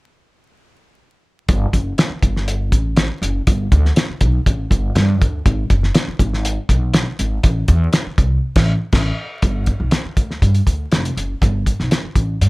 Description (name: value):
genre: uptempo 1960s-style soul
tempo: 121 BPM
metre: 4/4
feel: straight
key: G major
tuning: A4 = 439 Hz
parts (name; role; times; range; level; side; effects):
- upright bass; bass; 1.5-12.5 s; F1 to G2; -18 LUFS; equal; none
- cloth-damped thuddy drum kit; drums; 1.5-12.5 s; crash cymbal, hi-hat, kick drum, snare drum; -16 LUFS; equal; none
room: little or no reverb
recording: vinyl crackle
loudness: -15 LUFS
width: side -23 dB against mid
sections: 1.5-9.4 A section; 9.4-12.5 B section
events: band accent 8.4-9.4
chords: none